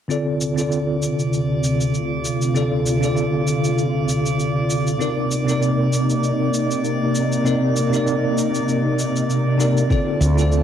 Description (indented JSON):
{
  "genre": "sunset chillout",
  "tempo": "98 BPM",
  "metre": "4/4",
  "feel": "swing 55% on 16ths",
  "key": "unclear",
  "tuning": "A4 = 435 Hz",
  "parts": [
    { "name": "bell-like tine electric piano", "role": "accompaniment", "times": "0.1-10.6 s", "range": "C3 to D5", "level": "-21 LUFS", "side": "equal", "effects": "fast stereo tremolo, auto-pan, low-pass filter, analog delay" },
    { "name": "soft string machine", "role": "sustained chords", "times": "0.3-10.6 s", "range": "D2 to F4", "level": "-22 LUFS", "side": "equal", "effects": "ensemble chorus" },
    { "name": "cabasa", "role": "drums", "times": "0.1-10.6 s", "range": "none", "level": "-30 LUFS", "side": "equal", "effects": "cassette tape" },
    { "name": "drifting glass-harmonics texture", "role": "texture", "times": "0.8-10.6 s", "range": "A4 to D6", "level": "-29 LUFS", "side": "right 1 dB", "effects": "chorus, built-in reverb" },
    { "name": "electronic kick drum", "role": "drums", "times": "9.9-10.0 s", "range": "none", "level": "-20 LUFS", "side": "equal", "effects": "cassette tape" },
    { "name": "mellow fretless electric bass", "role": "bass", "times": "10.2-10.6 s", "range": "D2", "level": "-16 LUFS", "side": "equal", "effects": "none" }
  ],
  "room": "wet studio reverb, RT60 0.6 s",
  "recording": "home recording on cassette",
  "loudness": "-18 LUFS",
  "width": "side -9 dB against mid",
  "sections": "0.1-9.9 A section",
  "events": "filter sweep on string machine 0.1-9.9",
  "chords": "0.1 Dm7; 5.0 Cm7; 9.9 Dm7"
}